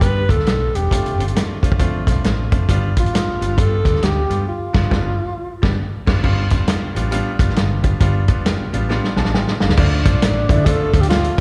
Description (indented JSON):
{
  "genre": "uptempo 1960s-style soul",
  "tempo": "135 BPM",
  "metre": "4/4",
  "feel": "swing 62% on 8ths",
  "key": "unclear",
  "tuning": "A4 = 440 Hz",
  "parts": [
    { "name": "breathy tenor saxophone", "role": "melody", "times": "0.0-5.8, 9.8-11.4 s", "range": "D4 to B4", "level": "-24 LUFS", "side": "equal", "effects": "slapback echo" },
    { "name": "bright upright piano", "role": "accompaniment", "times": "0.0-11.4 s", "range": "D3 to A5", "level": "-27 LUFS", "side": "equal", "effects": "none" },
    { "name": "vintage muted fingered electric bass", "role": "bass", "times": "0.0-11.4 s", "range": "E1 to D3", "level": "-22 LUFS", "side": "equal", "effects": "none" },
    { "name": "warm soul drum kit", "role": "drums", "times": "0.0-11.4 s", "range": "crash cymbal, hi-hat, kick drum, snare drum", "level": "-20 LUFS", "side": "equal", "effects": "none" }
  ],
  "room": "light reverb, small room ambience",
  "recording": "live gig heard through the venue's PA, recital hall reverb",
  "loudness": "-18 LUFS",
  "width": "mono",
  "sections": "0.0-6.2 A section; 6.2-9.8 B section; 9.8-11.4 C section",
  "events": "band accent 4.5-6.2; drum fill 8.9-9.8; upright piano fill 8.9-9.8",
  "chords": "0.0 G7; 0.9 F6; 2.7 G7; 9.8 Dm",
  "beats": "0.02 0.47 | 0.91 1.36 1.80 2.24 | 2.69 3.13 3.58 4.02 | 4.46 4.91 5.35 5.79 | 6.24 6.68 7.12 7.57 | 8.01 8.45 8.90 9.34 | 9.78 10.22 10.67 11.11"
}